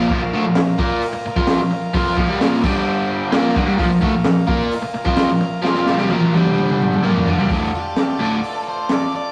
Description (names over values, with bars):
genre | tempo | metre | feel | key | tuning
garage rock duo or trio | 130 BPM | 4/4 | straight | unclear | A4 = 440 Hz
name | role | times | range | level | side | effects
overdriven combo organ | sustained chords | 0.0-9.3 s | F4 to Bb5 | -29 LUFS | equal | spring reverb
biting overdriven guitar | riff | 0.0-8.4 s | D2 to Bb4 | -21 LUFS | equal | none
crunchy breakbeat drum kit | drums | 0.1-9.0 s | crash cymbal, hi-hat, kick drum, snare drum, toms | -22 LUFS | equal | none
octave-fuzz lead guitar | melody | 7.8-9.3 s | G4 to D5 | -29 LUFS | equal | distortion
room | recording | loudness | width
wet stone room reverb, RT60 1.4 s | rough rehearsal-room recording, cassette tape | -18 LUFS | mono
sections
0.0-7.5 A section; 7.5-9.3 B section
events
transistor combo organ fill 3.1-3.8; drum fill 5.7-7.5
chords
0.0 Bb5; 2.6 G5; 3.3 Bb5; 6.4 G5; 7.0 Bb5; 7.5 Dm